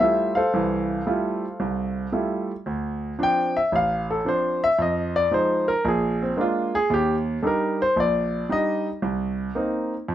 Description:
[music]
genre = solo jazz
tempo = 113 BPM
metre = 4/4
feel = swing 68% on 8ths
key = D minor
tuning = A4 = 440 Hz
[part]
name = warm concert grand piano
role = solo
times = 0.0-10.1 s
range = A1 to G5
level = -21 LUFS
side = equal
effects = none
[sound]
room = moderate studio reverb, RT60 0.6 s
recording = rough home demo mix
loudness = -21 LUFS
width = side -12 dB against mid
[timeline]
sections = 0.0-2.7 A section; 2.7-10.1 B section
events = grand piano solo 2.7-10.1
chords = 0.0 Fmaj9; 2.7 Dm7; 4.8 Fm7; 5.8 Bb7; 6.9 Ebmaj7; 9.0 Cm7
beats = 0.00 | 0.53 1.06 1.59 2.13 | 2.66 3.19 3.72 4.25 | 4.78 5.31 5.84 6.37 | 6.90 7.43 7.97 8.50 | 9.03 9.56 10.09

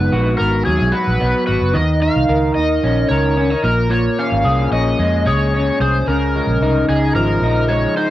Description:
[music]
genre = indie pop, bedroom pop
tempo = 111 BPM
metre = 4/4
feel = straight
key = Db major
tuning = A4 = 440 Hz
[part]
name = overdriven slide guitar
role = melody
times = 0.0-8.1 s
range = Ab4 to F5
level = -20 LUFS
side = equal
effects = analog chorus
[part]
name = electric guitar through a small old amp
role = accompaniment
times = 0.0-8.1 s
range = Ab2 to Bb4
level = -17 LUFS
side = equal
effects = analog chorus, vibrato effect, cassette tape
[part]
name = vintage muted fingered electric bass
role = bass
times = 0.0-7.9 s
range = Gb1 to F2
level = -18 LUFS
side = equal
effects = none
[sound]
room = light reverb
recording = home recording on cassette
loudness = -14 LUFS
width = side -14 dB against mid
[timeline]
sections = 0.0-8.1 A section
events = none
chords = 0.0 Abm7; 1.7 Eb5; 3.6 Bbm7; 6.1 Dbadd9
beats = 0.12 0.67 1.21 | 1.75 2.29 2.83 3.37 | 3.91 4.45 4.99 5.54 | 6.08 6.62 7.16 7.70

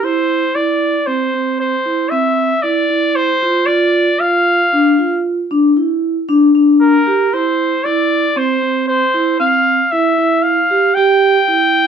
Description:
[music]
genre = progressive instrumental, progressive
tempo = 115 BPM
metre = 7/4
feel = straight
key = unclear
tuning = A4 = 439 Hz
[part]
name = clear trumpet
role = melody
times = 0.0-11.9 s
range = Bb4 to G5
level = -14 LUFS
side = equal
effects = none
[part]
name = vibraphone with medium mallets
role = arpeggios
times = 0.0-11.9 s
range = C4 to G4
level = -14 LUFS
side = right 2 dB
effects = none
[sound]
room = moderate studio reverb, RT60 0.7 s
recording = dark, warm production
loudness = -12 LUFS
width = side -7 dB against mid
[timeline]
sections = 0.0-11.9 A section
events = none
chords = 0.0 N.C.; 3.7 Bb (rootless); 7.3 F5; 11.0 G5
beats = | 0.04 0.56 1.08 1.61 2.13 2.65 3.17 | 3.69 4.21 4.73 5.25 5.77 6.29 6.81 | 7.33 7.85 8.37 8.88 9.40 9.92 10.44 | 10.96 11.48

